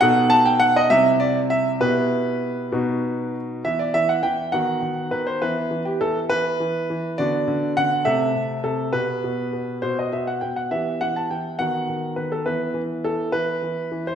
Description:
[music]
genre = classical-period piano sonatina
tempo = 68 BPM (dotted quarters)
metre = 6/8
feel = rubato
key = E minor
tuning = A4 = 440 Hz
[part]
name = warm concert grand piano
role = solo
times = 0.0-14.2 s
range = B2 to A5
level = -20 LUFS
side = equal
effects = none
[sound]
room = moderate scoring stage reverb, RT60 1.6 s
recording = recorded in a church or concert hall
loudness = -20 LUFS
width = side -8 dB against mid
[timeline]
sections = 0.0-3.7 A section; 3.7-14.2 B section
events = none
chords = 0.0 B7; 0.9 C; 1.8 Em/B; 2.7 B; 3.7 E5; 4.5 B/D#; 5.4 E5; 7.2 Bm/D; 8.0 Am/C; 8.9 G/B; 9.8 B5; 10.7 Em; 11.6 B/D#; 12.5 E5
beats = | 0.01 0.91 | 1.82 2.73 | 3.66 4.54 | 5.43 6.30 | 7.17 8.04 | 8.91 9.80 | 10.70 11.59 | 12.47 13.34

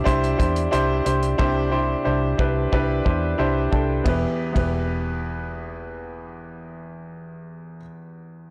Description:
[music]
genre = piano-driven pop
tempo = 90 BPM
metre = 4/4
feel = straight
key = E minor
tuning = A4 = 440 Hz
[part]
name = clear baby grand piano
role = accompaniment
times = 0.0-8.5 s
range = E2 to G5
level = -26 LUFS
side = equal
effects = none
[part]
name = vintage muted fingered electric bass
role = bass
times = 0.1-7.8 s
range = E1 to E2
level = -28 LUFS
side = equal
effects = transformer saturation
[part]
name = damped 70s drum kit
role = drums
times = 0.1-4.7 s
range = hi-hat, kick drum, ride cymbal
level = -26 LUFS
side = equal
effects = soft clipping on snare
[sound]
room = light reverb, small room reverb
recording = blown-out, overdriven recording, overdrive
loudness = -22 LUFS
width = mono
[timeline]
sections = 0.0-4.1 A section; 4.1-6.7 B section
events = grand piano fill 3.1-4.1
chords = 0.0 Cadd9; 4.1 Em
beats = 0.06 0.73 | 1.39 2.06 2.73 3.39 | 4.06 4.73 5.39 6.06

